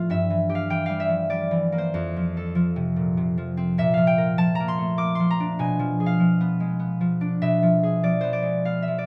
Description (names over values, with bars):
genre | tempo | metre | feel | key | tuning
classical, solo harp piece | 98 BPM | 3/4 | rubato | unclear | A4 = 441 Hz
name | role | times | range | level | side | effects
concert harp | solo | 0.0-9.1 s | F2 to D6 | -23 LUFS | equal | none
room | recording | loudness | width
light reverb | none | -23 LUFS | mono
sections
0.0-9.1 A section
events
none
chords
0.1 Em/G; 1.9 F; 3.8 Bb; 5.6 Bdim7